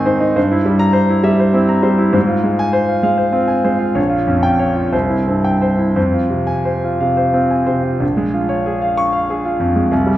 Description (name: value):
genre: classical, romantic character piece for solo piano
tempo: 57-68 BPM (dotted quarters)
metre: 6/8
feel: rubato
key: F minor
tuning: A4 = 439 Hz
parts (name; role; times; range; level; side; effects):
- clear concert grand piano; solo; 0.0-10.2 s; Bb1 to Db6; -13 LUFS; equal; none
room: wet recital hall reverb, RT60 1.2 s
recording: heard from further back in the room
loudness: -13 LUFS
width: side -14 dB against mid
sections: 0.0-8.0 A section; 8.0-10.2 B section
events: none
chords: 0.4 C7/G; 2.2 Fm/Ab; 4.0 Gm7b5/Bb; 4.9 C; 6.0 Fm; 8.0 Bbm7